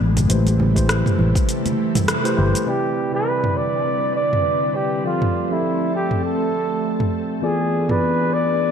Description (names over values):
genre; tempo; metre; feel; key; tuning
sunset chillout; 101 BPM; 4/4; swing 56% on 16ths; C major; A4 = 440 Hz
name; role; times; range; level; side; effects
ethereal airy pad; sustained chords; 0.0-8.7 s; C3 to B4; -25 LUFS; equal; ensemble chorus, built-in reverb
fretless electric bass; bass; 0.0-2.5 s; G1 to A1; -18 LUFS; equal; analog chorus
deep house drum kit; drums; 0.2-8.0 s; hi-hat, rim click, shaker, toms; -23 LUFS; equal; none
congas; percussion; 0.2-2.1 s; none; -28 LUFS; right 4 dB; none
mellow tine electric piano; accompaniment; 0.3-8.7 s; C3 to E5; -24 LUFS; moving between left 4 dB and right 3 dB; auto-pan, tape echo
electronic kick drum; drums; 0.8-1.5 s; none; -20 LUFS; equal; none
breathy flugelhorn; melody; 2.7-8.7 s; E4 to D5; -21 LUFS; right 1 dB; digital delay
room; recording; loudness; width
wet concert hall reverb, RT60 2.4 s; dark, warm production; -17 LUFS; side -7 dB against mid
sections
0.0-2.7 A section; 2.7-8.7 B section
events
band accent 2.1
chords
0.0 Am7; 2.7 Cmaj9; 5.0 Fmaj7; 7.4 E7b9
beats
| 0.30 0.89 1.48 2.08 | 2.67 3.27 3.86 4.45 | 5.05 5.64 6.24 6.83 | 7.42 8.02 8.61